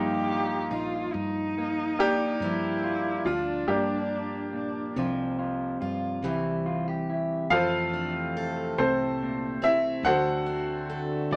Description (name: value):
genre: acoustic folk-pop ballad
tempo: 47 BPM (dotted quarters)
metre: 6/8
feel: straight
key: F major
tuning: A4 = 442 Hz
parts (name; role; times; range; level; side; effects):
- bright upright piano; melody; 0.0-11.4 s; Bb3 to F#5; -29 LUFS; equal; none
- dark cello; second line; 0.0-4.9 s; D4 to G4; -34 LUFS; equal; none
- electric guitar through a small old amp; accompaniment; 0.0-11.4 s; F2 to G4; -36 LUFS; equal; none
- picked steel-string acoustic guitar; arpeggios; 0.0-11.4 s; E3 to A4; -38 LUFS; equal; none
- woody fretless electric bass; bass; 0.0-11.4 s; A1 to G2; -40 LUFS; equal; none
- pedal harmonium; sustained chords; 7.5-11.4 s; C3 to F#4; -39 LUFS; equal; none
room: moderate studio reverb, RT60 0.7 s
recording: none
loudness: -28 LUFS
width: mono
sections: 0.0-7.5 A section; 7.5-11.4 B section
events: none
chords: 0.0 Ebadd9; 2.4 Gm7; 5.0 Csus4; 6.2 Cadd9; 7.5 Fmaj7; 10.0 D7